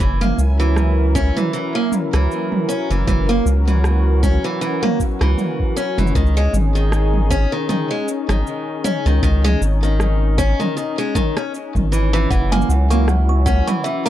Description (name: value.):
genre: folktronica.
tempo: 78 BPM.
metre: 4/4.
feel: swing 56% on 16ths.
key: F# mixolydian.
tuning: A4 = 441 Hz.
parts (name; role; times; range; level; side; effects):
warm analog pad; sustained chords; 0.0-14.1 s; F#3 to A#4; -25 LUFS; left 3 dB; chorus.
picked acoustic archtop guitar; arpeggios; 0.0-14.1 s; D#3 to C#4; -22 LUFS; right 1 dB; tape echo.
round analog bass; bass; 0.0-13.6 s; F#1 to C#2; -16 LUFS; equal; none.
electronic kick drum; drums; 0.0-13.6 s; none; -20 LUFS; equal; none.
organic electronic drum kit; drums; 0.0-14.1 s; hi-hat, rim click, shaker, toms; -24 LUFS; right 1 dB; none.
kalimba; second line; 12.3-14.1 s; E5 to C#6; -24 LUFS; right 4 dB; tape echo.
room: little or no reverb.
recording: dry, close 1970s-style studio recording.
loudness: -15 LUFS.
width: side -12 dB against mid.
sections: 0.0-14.1 A section.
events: none.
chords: 0.0 F#7; 6.2 C#sus2; 12.3 F#7.